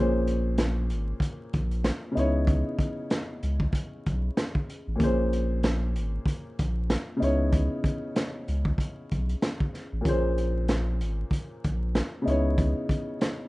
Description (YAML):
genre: hip hop, boom-bap hip-hop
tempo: 95 BPM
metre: 4/4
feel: swing 59% on 16ths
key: unclear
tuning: A4 = 439 Hz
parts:
  - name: dark upright piano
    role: accompaniment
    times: 0.0-13.5 s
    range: Bb2 to Db5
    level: -30 LUFS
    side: left 1 dB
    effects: cassette tape, high-pass filter, low-pass filter
  - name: warm sub bass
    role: bass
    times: 0.0-12.7 s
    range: Ab1 to Db2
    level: -27 LUFS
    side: equal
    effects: none
  - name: crunchy breakbeat drum kit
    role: drums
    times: 0.3-13.4 s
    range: hi-hat, kick drum, snare drum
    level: -28 LUFS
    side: equal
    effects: none
room: little or no reverb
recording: rough home demo mix, vinyl crackle, nothing above 10.6 kHz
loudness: -25 LUFS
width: side -20 dB against mid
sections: 0.0-13.5 A section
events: none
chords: 0.0 Bbm9; 2.2 Dbm9; 5.0 Bbm9; 7.2 Dbm9; 10.1 Bbm9; 12.3 Dbm9